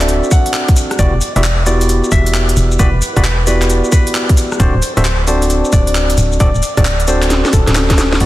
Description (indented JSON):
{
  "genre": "UK garage, two-step garage",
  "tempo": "133 BPM",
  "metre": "4/4",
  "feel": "swing 65% on 16ths",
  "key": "unclear",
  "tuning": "A4 = 440 Hz",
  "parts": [
    { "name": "concert harp", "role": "melody", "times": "0.0-8.3 s", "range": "A4 to F#5", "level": "-22 LUFS", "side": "left 1 dB", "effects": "digital delay" },
    { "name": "overdriven tine electric piano", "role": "stabs", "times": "0.0-8.3 s", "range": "B3 to E5", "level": "-18 LUFS", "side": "equal", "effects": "digital delay" },
    { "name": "organ-like FM bass", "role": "bass", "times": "0.0-8.3 s", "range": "D1 to E1", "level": "-14 LUFS", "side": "equal", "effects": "none" },
    { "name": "garage drum kit", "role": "drums", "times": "0.0-8.3 s", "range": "crash cymbal, handclaps, hi-hat, rim click, shaker, snare drum", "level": "-18 LUFS", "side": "equal", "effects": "soft clipping on snare" },
    { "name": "electronic kick drum", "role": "drums", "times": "0.3-8.3 s", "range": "none", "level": "-12 LUFS", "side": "equal", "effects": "none" }
  ],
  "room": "light reverb",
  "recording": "dense, heavily limited modern master, vinyl crackle",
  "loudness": "-10 LUFS",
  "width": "side -16 dB against mid",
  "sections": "0.0-8.2 A section",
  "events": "drop 0.0-8.2; drum fill 7.3-8.2",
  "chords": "0.0 D7; 1.0 Em9; 4.6 D7"
}